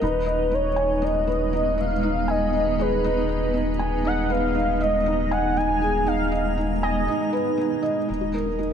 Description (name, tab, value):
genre	piano and strings electronica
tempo	119 BPM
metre	4/4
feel	straight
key	unclear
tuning	A4 = 440 Hz
part	warm velvety synth lead	melody	0.0-7.3 s	Cb5 to Ab5	-25 LUFS	equal	chorus, shimmer reverb
part	granular cloud pad	sustained chords	0.0-8.7 s	Gb3 to Bb5	-28 LUFS	right 2 dB	built-in reverb, shimmer reverb
part	felt-muted upright piano	riff	0.0-8.7 s	Eb4 to Ab5	-26 LUFS	equal	shimmer reverb, digital delay
part	round analog bass	bass	0.0-8.7 s	Eb1	-28 LUFS	equal	none
part	warbly dusty pluck	arpeggios	8.1-8.7 s	Eb4 to Bb4	-35 LUFS	left 4 dB	none
room	moderate lush hall reverb, RT60 2.7 s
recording	none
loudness	-20 LUFS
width	side -8 dB against mid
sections	0.0-8.1 A section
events	none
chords	0.0 Abm/Eb; 8.1 Ebm